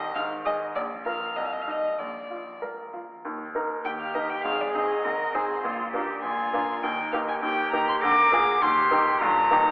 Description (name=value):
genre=quick classical-period movement for piano trio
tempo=100 BPM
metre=2/4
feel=rubato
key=Eb major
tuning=A4 = 439 Hz
part: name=warm violin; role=melody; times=0.0-9.7 s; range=C5 to D6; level=-25 LUFS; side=left 1 dB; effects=none
part: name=dark cello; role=second line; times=0.0-9.7 s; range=Eb3 to Bb4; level=-30 LUFS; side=right 1 dB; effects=none
part: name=bright baby grand piano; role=accompaniment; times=0.0-9.7 s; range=G1 to Eb5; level=-27 LUFS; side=equal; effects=none
room=wet recital hall reverb, RT60 1.8 s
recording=heard from further back in the room, telephone sound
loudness=-22 LUFS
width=side -23 dB against mid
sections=0.0-3.2 A section; 3.2-9.7 B section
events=none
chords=0.2 Ab5; 0.8 Bb5; 1.4 Cm; 2.0 Bb; 3.2 Eb; 4.4 Ab; 5.6 Bb; 6.8 Eb; 8.0 Bb7/D; 8.6 Eb; 9.2 Eb/G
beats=0.15 | 0.76 1.36 | 1.98 2.61 | 3.24 3.85 | 4.45 5.04 | 5.64 6.24 | 6.83 7.42 | 8.02 8.62 | 9.21